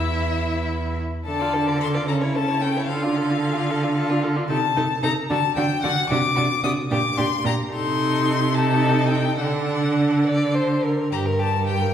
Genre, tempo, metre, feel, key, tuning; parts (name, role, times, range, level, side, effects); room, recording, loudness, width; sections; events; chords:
quick classical-period movement for string quartet; 74 BPM (dotted quarters); 6/8; rubato; D minor, G minor from 4.5 s; A4 = 440 Hz
clear violin; melody; 0.0-11.9 s; E5 to Eb6; -25 LUFS; left 7 dB
rich violin; second line; 0.0-11.9 s; E4 to D5; -28 LUFS; left 2 dB
rich viola; accompaniment; 0.0-10.9 s; C#4 to F4; -26 LUFS; right 2 dB
rich cello; bass; 0.0-11.9 s; E2 to D3; -23 LUFS; right 2 dB
wet recital hall reverb, RT60 1.7 s; heard from further back in the room; -19 LUFS; side -9 dB against mid
0.0-11.1 A section
0.0 N.C.; 1.3 Dm; 2.1 A/C#; 2.9 Dm; 4.5 Adim/C; 5.3 D; 6.1 D7/C; 6.9 Gm/Bb; 7.7 Adim/C; 9.4 D; 11.1 Gm